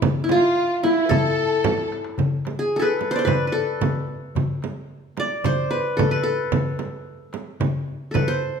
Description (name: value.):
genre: Arabic maqam ensemble.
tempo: 111 BPM.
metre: 4/4.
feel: straight.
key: A maqam nahawand.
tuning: A4 = 440 Hz.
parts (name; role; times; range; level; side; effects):
qanun; melody; 0.0-8.6 s; E4 to D5; -22 LUFS; equal; none.
darbuka; percussion; 0.0-8.4 s; none; -26 LUFS; left 3 dB; none.
frame drum; percussion; 0.0-8.3 s; none; -26 LUFS; right 8 dB; none.
rich studio violin section; second line; 0.3-1.9 s; E4 to A4; -30 LUFS; left 1 dB; none.
rich violin; second line; 0.3-1.9 s; E4 to B4; -26 LUFS; left 5 dB; none.
room: moderate recital hall reverb, RT60 1.3 s.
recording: minimal, uncompressed stereo recording.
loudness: -20 LUFS.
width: side -6 dB against mid.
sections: 0.0-2.2 A section; 2.2-8.6 B section.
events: drum fill 1.6-2.2.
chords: none.